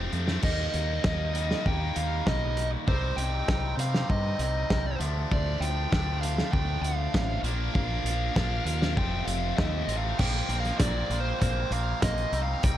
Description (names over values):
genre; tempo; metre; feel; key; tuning
indie rock; 98 BPM; 4/4; straight; Bb major; A4 = 440 Hz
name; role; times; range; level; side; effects
biting overdriven guitar; riff; 0.0-12.8 s; F2 to Eb4; -32 LUFS; left 1 dB; phaser
growling fingered electric bass; bass; 0.0-12.8 s; F1 to C3; -30 LUFS; equal; overdrive
loose indie drum kit; drums; 0.1-12.8 s; crash cymbal, hi-hat, kick drum, snare drum; -29 LUFS; equal; none
dark smooth lead guitar; melody; 0.4-12.8 s; C5 to G5; -33 LUFS; right 2 dB; overdrive
room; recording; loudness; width
studio ambience; dark, warm production; -25 LUFS; side -12 dB against mid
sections
0.4-10.2 A section; 10.2-12.8 B section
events
none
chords
0.4 Eb; 2.9 Cm; 5.0 Dm; 7.4 Bb; 9.0 F; 10.2 Bbsus2